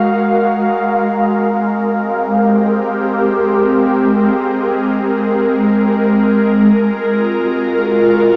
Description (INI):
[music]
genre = ambient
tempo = free time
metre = none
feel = none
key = unclear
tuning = A4 = 440 Hz
[part]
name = ethereal airy pad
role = sustained chords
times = 0.0-8.4 s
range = Ab3 to F5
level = -14 LUFS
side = equal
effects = ensemble chorus, built-in reverb, phaser
[part]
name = clean electric guitar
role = arpeggios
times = 0.0-1.3 s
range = Gb4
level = -36 LUFS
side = equal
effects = none
[part]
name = drifting glass-harmonics texture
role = texture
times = 0.0-0.9 s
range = Bb5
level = -46 LUFS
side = equal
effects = none
[sound]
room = wet huge ambient reverb, RT60 8.0 s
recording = small speaker sound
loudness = -14 LUFS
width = mono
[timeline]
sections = 0.9-8.4 A section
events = none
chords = 0.0 Gbmaj9; 0.9 Abmaj9; 6.0 Gbmaj9